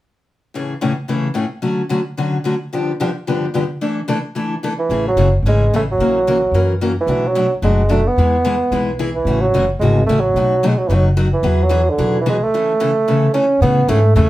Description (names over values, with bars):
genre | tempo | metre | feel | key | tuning
acoustic string swing (jazz manouche) | 220 BPM | 4/4 | swing 56% on 8ths | A major | A4 = 441 Hz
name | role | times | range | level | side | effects
picked steel-string acoustic guitar | accompaniment | 0.5-14.3 s | G2 to A#4 | -19 LUFS | left 2 dB | none
warm bassoon | melody | 4.8-14.3 s | D3 to C#4 | -16 LUFS | right 2 dB | none
upright bass | bass | 4.9-14.3 s | F#1 to A2 | -17 LUFS | equal | none
room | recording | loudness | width
moderate studio reverb, RT60 0.5 s | heard from further back in the room | -14 LUFS | side -15 dB against mid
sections
0.5-4.9 A section; 4.9-13.6 B section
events
none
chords
0.5 Amaj7; 1.6 Dmaj7; 2.7 G7; 3.8 E7sus4; 4.9 Amaj7; 6.0 F#7/A#; 7.1 Bm7; 8.2 E; 9.3 A6; 10.3 B7; 11.4 Eadd9; 12.5 A; 13.6 Amaj7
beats
| 0.54 0.81 1.08 1.36 | 1.63 1.90 2.17 2.44 | 2.72 2.99 3.26 3.53 | 3.81 4.08 4.35 4.62 | 4.89 5.17 5.44 5.71 | 5.98 6.26 6.53 6.80 | 7.07 7.35 7.62 7.89 | 8.16 8.44 8.71 8.98 | 9.25 9.53 9.80 10.07 | 10.34 10.62 10.89 11.16 | 11.43 11.71 11.98 12.25 | 12.52 12.79 13.07 13.34 | 13.61 13.88 14.15